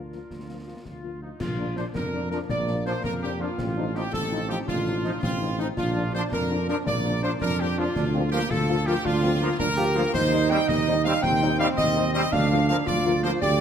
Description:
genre	military-style march for wind band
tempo	110 BPM (dotted quarters)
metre	6/8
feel	straight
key	Bb major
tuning	A4 = 440 Hz
part	clear trumpet section	melody	0.0-13.6 s	Eb4 to G5	-30 LUFS	equal	none
part	clear woodwind section	second line	0.0-13.6 s	Eb4 to G5	-30 LUFS	left 1 dB	none
part	warm euphonium	second line	0.0-13.6 s	Bb3 to G4	-30 LUFS	right 4 dB	none
part	dark tuba	bass	0.0-13.6 s	A1 to F2	-27 LUFS	right 2 dB	none
part	mellow French horn section	accompaniment	0.1-13.3 s	F3 to F4	-32 LUFS	left 7 dB	none
part	concert snare drum, concert bass drum and clash cymbals	drums	0.1-13.6 s	none	-34 LUFS	left 2 dB	none
part	warm trombone section	sustained chords	1.8-13.3 s	F3 to Eb4	-34 LUFS	right 1 dB	none
room	moderate concert hall reverb, RT60 2.0 s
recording	none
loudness	-22 LUFS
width	side -8 dB against mid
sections	0.0-1.4 A section; 1.4-13.6 A section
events	none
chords	0.0 Bb/D; 1.4 Bb; 3.6 F7/A; 5.8 Bb; 8.0 Bb/D; 10.1 Cm/Eb; 12.3 Bb/D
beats	| 0.30 0.85 | 1.40 1.95 | 2.49 3.04 | 3.59 4.13 | 4.68 5.23 | 5.77 6.32 | 6.87 7.41 | 7.96 8.51 | 9.05 9.60 | 10.14 10.69 | 11.23 11.78 | 12.33 12.87 | 13.42

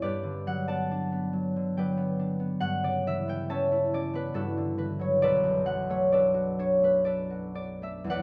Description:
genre	classical, solo harp piece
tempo	52-71 BPM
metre	3/4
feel	rubato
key	unclear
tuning	A4 = 440 Hz
part	concert harp	solo	0.0-8.2 s	B1 to A5	-28 LUFS	equal	none
room	moderate recital hall reverb, RT60 1.7 s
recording	none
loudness	-28 LUFS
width	mono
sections	0.0-8.2 A section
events	none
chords	0.0 Gmaj7; 2.6 Aadd9/G; 5.2 Bm7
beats	| 0.03 0.90 1.77 | 2.62 3.50 4.36 | 5.22 6.13 7.07 | 8.12

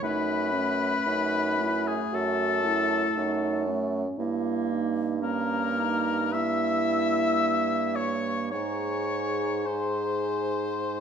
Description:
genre	classical, slow romantic movement for wind quintet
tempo	52-59 BPM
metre	4/4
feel	rubato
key	unclear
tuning	A4 = 440 Hz
part	concert flute	melody	0.0-11.0 s	G#5 to E6	-35 LUFS	left 7 dB	none
part	clear oboe	second line	0.0-11.0 s	G#4 to E5	-28 LUFS	left 4 dB	none
part	dark French horn	accompaniment	0.0-11.0 s	C#4 to G#4	-31 LUFS	right 2 dB	none
part	mellow clarinet	accompaniment	0.0-11.0 s	A3 to D#4	-32 LUFS	right 7 dB	none
part	clear bassoon	bass	0.0-11.0 s	F#2 to G#2	-32 LUFS	right 2 dB	none
room	moderate recital hall reverb, RT60 1.3 s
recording	none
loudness	-24 LUFS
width	side -7 dB against mid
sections	0.0-11.0 A section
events	none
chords	0.0 F#m; 4.2 Gdim7; 8.5 G#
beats	| 0.03 1.07 2.13 3.17 | 4.18 5.23 6.34 7.42 | 8.53 9.67 10.82

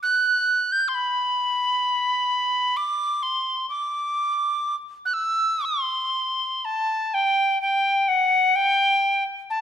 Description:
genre	celtic folk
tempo	58-66 BPM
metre	3/4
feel	rubato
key	D mixolydian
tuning	A4 = 440 Hz
part	bright wooden whistle	solo	0.0-9.6 s	F#5 to G6	-20 LUFS	equal	none
room	moderate concert hall reverb, RT60 1.7 s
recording	minimal, uncompressed stereo recording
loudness	-20 LUFS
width	side -9 dB against mid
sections	0.0-6.6 A section; 6.6-9.6 B section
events	none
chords	none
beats	0.02 | 0.94 1.85 2.76 | 3.69 4.65 5.65 | 6.65 7.62 8.56 | 9.51

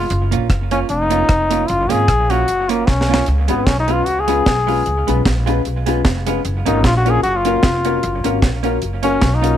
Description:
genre	ska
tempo	152 BPM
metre	4/4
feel	swing 54% on 8ths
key	F# major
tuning	A4 = 441 Hz
part	brilliant trombone	melody	0.0-9.6 s	A#3 to G#4	-18 LUFS	left 2 dB	none
part	vintage hollow-body jazz guitar	accompaniment	0.0-9.6 s	G#3 to E#4	-23 LUFS	right 14 dB	tape echo
part	upright bass	bass	0.0-9.6 s	E#1 to C#2	-19 LUFS	equal	none
part	deep reggae drum kit	drums	0.1-9.5 s	hi-hat, kick drum, rim click, snare drum	-18 LUFS	right 1 dB	none
part	dark upright piano	stabs	3.5-9.6 s	C#4 to B4	-22 LUFS	left 14 dB	none
room	studio reverb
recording	1960s-style stereo with parts hard left and right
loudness	-14 LUFS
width	side -10 dB against mid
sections	0.0-9.6 A section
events	trombone solo 0.0-9.6; drum fill 2.9-3.3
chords	0.1 F#maj7; 3.3 C#7; 6.4 F#maj7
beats	| 0.11 0.50 0.90 1.29 | 1.69 2.09 2.48 2.88 | 3.27 3.67 4.07 4.46 | 4.86 5.25 5.65 6.04 | 6.44 6.84 7.23 7.63 | 8.03 8.42 8.82 9.22

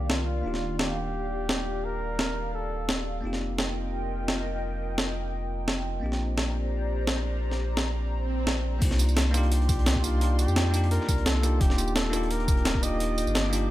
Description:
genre	liquid drum and bass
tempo	172 BPM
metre	4/4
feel	swing 53% on 16ths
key	C minor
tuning	A4 = 439 Hz
part	mellow flugelhorn	melody	0.0-3.0, 9.3-13.5 s	F4 to Eb5	-34 LUFS	equal	digital delay
part	bell-like tine electric piano	accompaniment	0.0-13.7 s	Bb3 to G4	-34 LUFS	equal	vintage 12-bit sampler grit
part	airy breathy pad	sustained chords	0.0-13.7 s	Eb3 to D6	-36 LUFS	left 1 dB	chorus, phaser
part	warm sub bass	bass	0.0-13.7 s	Eb1 to F2	-28 LUFS	equal	none
part	breakbeat sampler-style drum kit	drums	0.1-13.6 s	crash cymbal, hi-hat, snare drum, tambourine	-29 LUFS	equal	studio reverb
part	swell	sound effects	8.2-8.8 s	none	-36 LUFS	right 3 dB	none
part	crunchy breakbeat drum kit	drums	8.8-13.6 s	hi-hat, snare drum	-41 LUFS	equal	none
part	electronic kick drum	drums	8.8-12.8 s	none	-25 LUFS	equal	studio reverb
room	light reverb, small room reverb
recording	none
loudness	-24 LUFS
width	side -15 dB against mid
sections	0.0-8.8 A section; 8.8-13.7 B section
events	filter sweep on analog synth pad 0.0-8.8; swell 8.2-8.8; drop 8.8-13.7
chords	0.4 Ebmaj9; 3.2 F9sus4; 6.0 Bb69; 8.8 Cm11; 11.6 Ebmaj9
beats	0.10 | 0.45 0.80 1.14 1.49 | 1.84 2.19 2.54 2.89 | 3.24 3.59 3.94 4.28 | 4.63 4.98 5.33 5.68 | 6.03 6.38 6.72 7.07 | 7.42 7.77 8.12 8.47 | 8.82 9.17 9.52 9.87 | 10.21 10.56 10.91 11.26 | 11.61 11.96 12.31 12.66 | 13.01 13.35 13.70

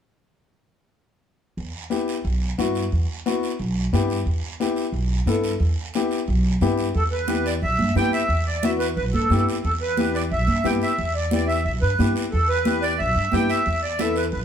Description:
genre	latin, cumbia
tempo	179 BPM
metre	4/4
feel	straight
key	E minor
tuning	A4 = 440 Hz
part	upright bass	bass	1.6-14.4 s	B1 to G2	-24 LUFS	right 1 dB	none
part	guiro	percussion	1.6-14.4 s	none	-36 LUFS	right 6 dB	none
part	warm upright piano	accompaniment	1.9-14.2 s	B3 to A4	-24 LUFS	left 4 dB	none
part	congas	percussion	6.9-14.4 s	none	-28 LUFS	right 4 dB	none
part	accordion	melody	7.0-14.4 s	A4 to G5	-23 LUFS	right 1 dB	light tremolo tuning, slapback echo
room	moderate stone room reverb, RT60 1.1 s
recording	band playing live in one room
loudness	-20 LUFS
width	side -8 dB against mid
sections	1.6-7.0 A section; 7.0-14.4 B section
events	none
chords	1.6 Em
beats	| 1.58 1.92 2.25 2.59 | 2.92 3.26 3.60 3.93 | 4.27 4.60 4.94 5.28 | 5.61 5.95 6.28 6.62 | 6.95 7.29 7.63 7.96 | 8.30 8.63 8.97 9.30 | 9.64 9.98 10.31 10.65 | 10.98 11.32 11.66 11.99 | 12.33 12.66 13.00 13.34 | 13.67 14.01 14.34

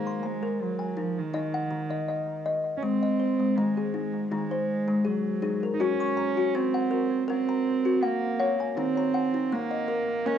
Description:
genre	world meditative, meditative tuned percussion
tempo	81 BPM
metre	4/4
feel	swing 55% on 16ths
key	unclear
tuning	A4 = 440 Hz
part	warm cello	melody	0.0-10.4 s	Eb3 to Eb4	-28 LUFS	right 6 dB	analog delay
part	kalimba	arpeggios	0.0-10.4 s	Eb3 to Db6	-27 LUFS	left 5 dB	cassette tape, plate reverb, analog delay
room	wet studio reverb, RT60 0.6 s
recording	home recording on cassette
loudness	-25 LUFS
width	side -9 dB against mid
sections	0.0-2.8 A section; 2.8-10.4 B section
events	none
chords	0.0 Ebm; 2.8 Ab; 5.8 Gb; 8.8 Ebm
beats	0.60 1.34 2.09 | 2.83 3.57 4.32 5.06 | 5.80 6.55 7.29 8.03 | 8.78 9.52 10.27

